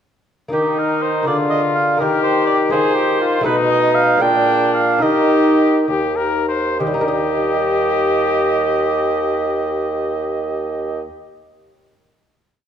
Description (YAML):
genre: classical, baroque-style sonata movement with continuo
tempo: 64-83 BPM (dotted quarters)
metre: 6/8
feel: straight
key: Eb major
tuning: A4 = 441 Hz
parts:
  - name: clear trumpet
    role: melody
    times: 0.5-11.0 s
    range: D4 to C5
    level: -20 LUFS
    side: left 6 dB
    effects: none
  - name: warm oboe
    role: second line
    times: 0.5-11.0 s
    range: G4 to G5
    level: -20 LUFS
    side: right 5 dB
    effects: none
  - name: lute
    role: accompaniment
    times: 0.5-11.3 s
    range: Eb2 to Eb5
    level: -22 LUFS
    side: equal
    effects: none
  - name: mellow bassoon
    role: bass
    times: 0.5-11.0 s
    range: Eb2 to Eb3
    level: -20 LUFS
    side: right 2 dB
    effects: none
room: wet recital hall reverb, RT60 1.6 s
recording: dark, warm production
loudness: -15 LUFS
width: side -8 dB against mid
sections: 0.5-6.8 A section; 6.8-10.5 final chord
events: slowing down 2.7-6.8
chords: 0.5 Eb; 1.3 Bb7/D; 2.0 Eb; 2.7 Fm7/Eb; 3.5 B7; 4.2 Bb7; 5.0 Eb